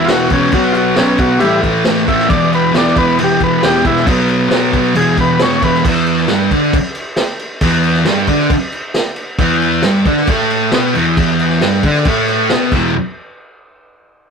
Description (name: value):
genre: garage rock duo or trio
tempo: 135 BPM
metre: 4/4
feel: straight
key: unclear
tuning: A4 = 443 Hz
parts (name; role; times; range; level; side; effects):
- combo organ; melody; 0.0-5.8 s; G3 to E5; -15 LUFS; left 1 dB; slapback echo
- thick fuzz guitar; riff; 0.0-12.9 s; E2 to D4; -13 LUFS; equal; distortion
- vintage drum kit; drums; 0.1-12.8 s; crash cymbal, kick drum, snare drum; -18 LUFS; equal; none
room: light reverb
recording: rough rehearsal-room recording, warm saturation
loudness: -11 LUFS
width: side -6 dB against mid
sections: 0.0-5.8 A section; 5.8-12.9 B section; 12.9-14.3 C section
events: none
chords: 0.0 E5; 0.5 B5; 1.4 A5; 2.3 E5; 4.1 B5; 5.0 E5; 12.9 N.C.